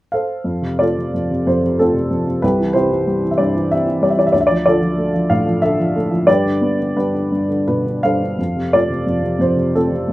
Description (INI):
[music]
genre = classical, lyrical solo piano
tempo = 82-97 BPM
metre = 3/4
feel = rubato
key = F lydian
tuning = A4 = 440 Hz
[part]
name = dark upright piano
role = solo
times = 0.1-10.1 s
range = C2 to F5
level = -15 LUFS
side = equal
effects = none
[sound]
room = light reverb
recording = close, detailed microphones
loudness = -15 LUFS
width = side -17 dB against mid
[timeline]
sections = 0.5-10.1 A section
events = none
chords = 0.5 F; 2.4 C; 4.3 Dmadd9; 6.3 G; 8.4 F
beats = | 0.45 1.13 1.79 | 2.42 3.07 3.71 | 4.33 4.96 5.60 | 6.27 6.96 7.67 | 8.38 9.07 9.75